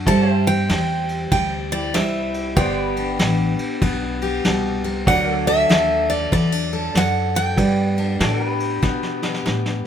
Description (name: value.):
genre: honky-tonk and classic country.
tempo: 96 BPM.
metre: 4/4.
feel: swing 63% on 8ths.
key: G major.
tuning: A4 = 439 Hz.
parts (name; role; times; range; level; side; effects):
picked steel-string acoustic guitar; accompaniment; 0.0-9.9 s; G2 to A4; -26 LUFS; left 5 dB; none.
warm grand piano; accompaniment; 0.0-9.9 s; F#3 to E5; -30 LUFS; right 5 dB; none.
pedal steel guitar; sustained chords; 0.0-9.9 s; F#3 to E5; -29 LUFS; left 1 dB; none.
upright bass; bass; 0.0-9.8 s; G1 to B2; -23 LUFS; equal; none.
picked steel-string acoustic guitar; melody; 0.1-9.4 s; D5 to A5; -22 LUFS; right 1 dB; none.
vintage brush drum kit; drums; 0.1-9.8 s; kick drum, ride cymbal, snare drum; -24 LUFS; equal; none.
room: light reverb.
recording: minimal, uncompressed stereo recording.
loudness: -17 LUFS.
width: side -9 dB against mid.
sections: 0.0-9.9 A section.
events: drum fill 8.8-9.9.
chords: 0.1 C; 2.6 G; 5.1 D; 7.6 G.